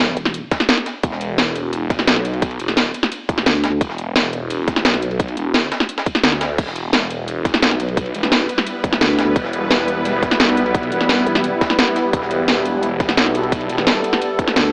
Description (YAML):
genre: dark technical drum and bass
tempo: 173 BPM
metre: 4/4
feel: straight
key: E minor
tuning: A4 = 440 Hz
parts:
  - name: phased detuned saw bass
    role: bass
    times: 0.0-14.5 s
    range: E1 to D2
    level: -26 LUFS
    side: equal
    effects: phaser, overdrive, sidechain pumping
  - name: vowel-sweep wobble bass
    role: bass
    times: 0.2-0.5, 3.5-3.8, 9.0-11.6, 14.6-14.7 s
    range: E1 to D2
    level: -22 LUFS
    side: equal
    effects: chorus, tube saturation
  - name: breakbeat sampler-style drum kit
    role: drums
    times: 0.2-14.7 s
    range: ride cymbal, snare drum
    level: -30 LUFS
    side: equal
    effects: high-pass filter on cymbals, high-pass filter on snare
  - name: drum and bass drum kit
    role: drums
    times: 0.2-14.6 s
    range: crash cymbal, hi-hat, snare drum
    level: -20 LUFS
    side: equal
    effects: none
  - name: electronic kick drum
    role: drums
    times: 0.5-14.5 s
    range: none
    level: -21 LUFS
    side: equal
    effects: none
  - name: swarming drone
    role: sustained chords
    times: 7.9-14.7 s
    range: G3 to B4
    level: -23 LUFS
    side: equal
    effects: built-in reverb, sidechain pumping
room: moderate lush hall reverb, RT60 1.8 s, digital ambience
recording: AM radio sound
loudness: -18 LUFS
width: mono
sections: 0.0-14.7 A section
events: none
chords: 0.0 Em